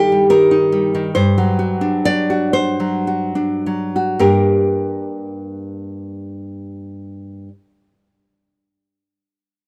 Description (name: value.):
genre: romantic piece for solo classical guitar.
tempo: 33-52 BPM (dotted quarters).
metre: 6/8.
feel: rubato.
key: G minor.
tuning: A4 = 444 Hz.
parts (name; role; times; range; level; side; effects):
nylon-string guitar; solo; 0.0-7.5 s; G2 to D5; -18 LUFS; equal; none.
room: light reverb.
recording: dry, close 1970s-style studio recording.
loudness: -17 LUFS.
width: mono.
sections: 0.0-4.2 A section; 4.2-9.7 B section.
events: slowing down 0.0-4.2.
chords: 0.0 Eb/G; 1.1 D7/G; 4.2 Gm.